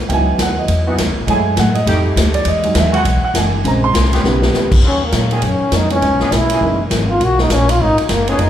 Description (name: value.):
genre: jazz, big band swing.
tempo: 203 BPM.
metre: 4/4.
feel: swing 61% on 8ths.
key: Eb minor from 4.8 s.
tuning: A4 = 440 Hz.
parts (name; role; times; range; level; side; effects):
picked steel-string acoustic guitar; accompaniment; 0.1-8.5 s; Gb2 to B#4; -24 LUFS; left 4 dB; none.
warm baby grand piano; accompaniment; 0.1-6.8 s; C#3 to B#5; -18 LUFS; right 2 dB; none.
upright bass; bass; 0.1-8.5 s; F1 to Bb2; -17 LUFS; equal; none.
swinging big-band drum kit; drums; 0.1-8.5 s; crash cymbal, hi-hat, kick drum, ride cymbal, snare drum; -18 LUFS; equal; none.
clear trombone section; sustained chords; 0.9-8.5 s; Eb3 to Ab4; -26 LUFS; equal; none.
warm trombone; melody; 4.9-8.5 s; F#3 to F#4; -16 LUFS; left 1 dB; none.
room: wet recital hall reverb, RT60 1.6 s.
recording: recorded in a church or concert hall.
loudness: -12 LUFS.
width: side -10 dB against mid.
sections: 0.0-4.8 A section; 4.8-8.5 A section.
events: grand piano solo 0.0-4.8; drum fill 4.2; trombone solo 4.8-8.5.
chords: 0.1 C#m11; 1.3 F#m9; 1.9 F9; 2.5 Emaj9; 3.6 A#m9; 4.2 D#aug7; 4.8 Ebm9; 6.0 Dbm7; 6.6 Gb13; 7.2 Bmaj9.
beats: | 0.10 0.39 0.69 0.98 | 1.28 1.58 1.87 2.17 | 2.46 2.76 3.06 3.35 | 3.65 3.95 4.24 4.54 | 4.83 5.13 5.43 5.72 | 6.02 6.32 6.61 6.91 | 7.21 7.50 7.80 8.09 | 8.39.